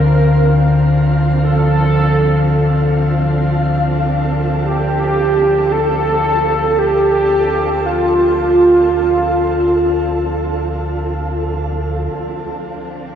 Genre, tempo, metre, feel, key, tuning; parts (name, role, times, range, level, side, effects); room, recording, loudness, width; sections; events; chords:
dark ambient drone; free time; D minor; A4 = 440 Hz
mellow horn-like synth lead; melody; 0.0-11.1 s; F4 to Bb4; -15 LUFS; right 1 dB; analog chorus, shimmer reverb, diffuse ambient delay
warm chamber cello section; sustained chords; 0.0-13.2 s; F3 to D4; -26 LUFS; equal; shimmer reverb
deep rumbling drone; drone; 0.0-13.2 s; D2 to D3; -16 LUFS; left 1 dB; built-in reverb
flickering grainy texture; texture; 0.0-12.2 s; F4 to F5; -23 LUFS; right 1 dB; built-in reverb, shimmer reverb
wet cathedral reverb, RT60 5.5 s; dark, warm production; -12 LUFS; side -8 dB against mid
0.0-12.1 A section; 12.1-13.2 B section
fade-out on cello section 0.0-12.1; filter sweep on synth drone 12.1-13.2
0.0 Dm